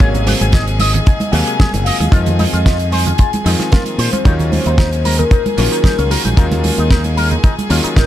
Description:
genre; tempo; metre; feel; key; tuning
nu-disco, nu disco; 113 BPM; 4/4; swing 53% on 16ths; Eb dorian; A4 = 445 Hz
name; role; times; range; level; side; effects
soft octave-layered synth lead; melody; 0.0-8.1 s; Gb4 to Ab5; -22 LUFS; left 2 dB; chorus, phaser, tape echo
clear electric grand piano; accompaniment; 0.0-8.1 s; C3 to F5; -22 LUFS; left 3 dB; none
bright chamber string section; sustained chords; 0.0-8.1 s; Ab4 to Ab5; -26 LUFS; equal; sidechain pumping
electric guitar with an envelope filter; riff; 0.0-8.1 s; Db4 to Eb5; -24 LUFS; left 2 dB; analog chorus, tape echo
fingered electric bass with an envelope filter; bass; 0.0-8.1 s; Gb1 to Bb2; -16 LUFS; equal; none
damped 70s drum kit; drums; 0.0-8.1 s; hi-hat, snare drum; -21 LUFS; right 3 dB; none
kick drum; drums; 0.0-8.1 s; none; -11 LUFS; equal; none
congas; percussion; 0.1-8.1 s; none; -23 LUFS; right 4 dB; none
room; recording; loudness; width
small room reverb; none; -11 LUFS; side -12 dB against mid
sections
0.0-8.1 A section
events
none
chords
0.0 Ab13; 2.1 Fm7; 4.3 Ebm9

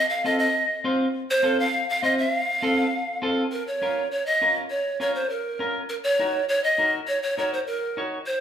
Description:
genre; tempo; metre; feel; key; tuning
latin; 202 BPM; 4/4; straight; Bb minor from 3.5 s; A4 = 443 Hz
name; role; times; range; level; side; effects
breathy bright pan flute; melody; 0.0-8.4 s; Bb4 to F5; -23 LUFS; equal; none
clean electric guitar; accompaniment; 0.2-8.2 s; C4 to Db5; -27 LUFS; equal; none
room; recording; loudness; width
wet large studio reverb, RT60 1.2 s; band playing live in one room; -22 LUFS; side -9 dB against mid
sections
0.0-3.5 A section; 3.5-8.4 B section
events
none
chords
0.0 F7; 3.5 Bbm; 5.9 Ebm

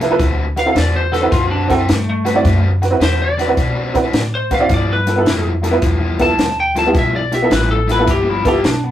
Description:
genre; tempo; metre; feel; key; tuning
electric blues shuffle; 107 BPM; 4/4; swing 67% on 8ths; D mixolydian; A4 = 440 Hz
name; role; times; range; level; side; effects
honky-tonk upright piano; accompaniment; 0.0-8.6 s; B3 to E5; -17 LUFS; right 2 dB; none
overdriven semi-hollow guitar; riff; 0.0-8.7 s; G2 to B4; -22 LUFS; left 2 dB; none
upright bass; bass; 0.0-8.9 s; G1 to B2; -19 LUFS; equal; none
compact cocktail drum kit; drums; 0.0-8.8 s; hi-hat, kick drum, snare drum; -19 LUFS; equal; none
lightly driven lead guitar; melody; 0.6-8.9 s; A3 to A5; -19 LUFS; left 2 dB; none
room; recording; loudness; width
moderate studio ambience, RT60 0.5 s; rough rehearsal-room recording; -13 LUFS; side -12 dB against mid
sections
0.0-8.9 A section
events
honky-tonk piano fill 0.0; lead electric guitar solo 0.0-8.9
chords
0.2 D13; 4.7 G13

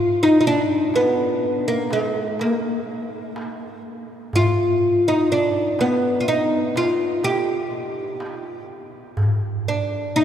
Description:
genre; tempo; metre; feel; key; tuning
Arabic maqam ensemble; 124 BPM (eighths); 10/8; straight; G maqam saba; A4 = 440 Hz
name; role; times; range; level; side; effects
oud; melody; 0.0-10.2 s; Ab3+50c to G4; -19 LUFS; equal; none
darbuka; percussion; 0.9-9.4 s; none; -27 LUFS; equal; none
room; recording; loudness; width
wet cathedral reverb, RT60 5.8 s; recorded in a church or concert hall; -18 LUFS; side -9 dB against mid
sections
0.0-10.2 A section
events
none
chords
none

